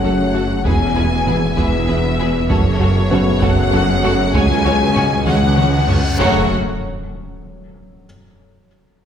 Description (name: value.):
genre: cinematic, hybrid orchestral and electronic film score.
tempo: 65 BPM (dotted quarters).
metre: 6/8.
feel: straight.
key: F# minor.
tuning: A4 = 442 Hz.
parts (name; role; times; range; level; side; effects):
clear symphonic violin section; melody; 0.0-6.5 s; C#5 to G#5; -22 LUFS; left 4 dB; none.
rich studio violin section; second line; 0.0-6.5 s; F#4 to C#5; -25 LUFS; left 1 dB; none.
rich symphonic viola section; accompaniment; 0.0-6.5 s; G#3 to E4; -26 LUFS; right 2 dB; none.
dark analog pad; sustained chords; 0.0-6.5 s; F#3 to C#5; -26 LUFS; left 1 dB; chorus, phaser.
warm French horn section; sustained chords; 0.0-6.5 s; G#3 to G#4; -26 LUFS; left 2 dB; none.
warm trombone section; sustained chords; 0.0-6.5 s; B2 to F#3; -26 LUFS; right 1 dB; none.
warbly dusty pluck; arpeggios; 0.0-6.1 s; C#3 to F#4; -27 LUFS; equal; none.
round analog bass; riff; 0.0-6.1 s; C#2 to F#3; -23 LUFS; right 1 dB; none.
rich studio cello section; bass; 0.0-6.5 s; C#2 to F#2; -22 LUFS; right 2 dB; none.
rich studio double bass section; bass; 0.0-6.5 s; E1 to C#2; -23 LUFS; right 1 dB; none.
sub bass with octave; bass; 0.0-6.5 s; E1 to C#2; -25 LUFS; equal; none.
felt-muted upright piano; texture; 0.0-6.2 s; G#3 to B4; -29 LUFS; left 2 dB; none.
solo taiko drums; drums; 0.7-6.2 s; none; -22 LUFS; right 1 dB; none.
reverse cymbal and impact; sound effects; 5.6-8.0 s; none; -28 LUFS; equal; none.
room: wet scoring stage reverb, RT60 1.4 s.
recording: heard from further back in the room.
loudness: -13 LUFS.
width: side -8 dB against mid.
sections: 0.0-6.2 A section; 6.2-8.0 B section.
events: drum fill 5.3-6.2; reverse cymbal 5.6-6.2; impact 6.2-8.0.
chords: 0.0 F#m; 0.7 E; 2.5 F#m; 4.3 C#sus4; 6.2 F#m.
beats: | 0.66 1.58 | 2.50 3.42 | 4.35 5.27 | 6.19 7.12.